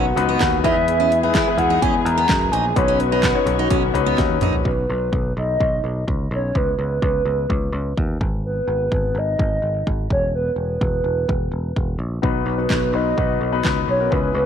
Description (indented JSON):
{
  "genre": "piano-driven pop",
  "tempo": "127 BPM",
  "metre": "4/4",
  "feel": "straight",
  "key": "B major",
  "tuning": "A4 = 440 Hz",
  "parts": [
    { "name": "hollow clarinet-like synth lead", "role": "melody", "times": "0.0-14.5 s", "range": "B4 to A#5", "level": "-22 LUFS", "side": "right 2 dB", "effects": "chorus, slapback echo" },
    { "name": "warm concert grand piano", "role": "accompaniment", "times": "0.0-4.7, 12.2-14.5 s", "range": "B2 to C#5", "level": "-22 LUFS", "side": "left 12 dB", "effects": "none" },
    { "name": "dark studio string section", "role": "sustained chords", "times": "0.0-4.7 s", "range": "D#3 to G#4", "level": "-28 LUFS", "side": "left 1 dB", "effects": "none" },
    { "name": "picked steel-string acoustic guitar", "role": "riff", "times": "0.0-4.5 s", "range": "B3 to F#4", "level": "-27 LUFS", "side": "right 13 dB", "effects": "none" },
    { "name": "picked electric bass", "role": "bass", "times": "0.0-14.5 s", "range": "E1 to F#2", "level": "-24 LUFS", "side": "equal", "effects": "none" },
    { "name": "pop drum kit", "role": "drums", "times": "0.2-14.2 s", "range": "handclaps, hi-hat, kick drum, snare drum, toms", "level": "-23 LUFS", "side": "equal", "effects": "none" }
  ],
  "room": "light reverb, small room reverb",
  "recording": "1960s-style stereo with parts hard left and right",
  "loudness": "-17 LUFS",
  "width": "side -8 dB against mid",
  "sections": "0.0-4.7 A section; 4.7-14.5 B section",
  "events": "drum fill 4.2-4.7",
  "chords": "0.0 B; 0.6 E; 2.8 Badd9; 4.7 B; 6.6 Bsus2/C#; 8.2 G#m; 10.1 E5; 12.2 B"
}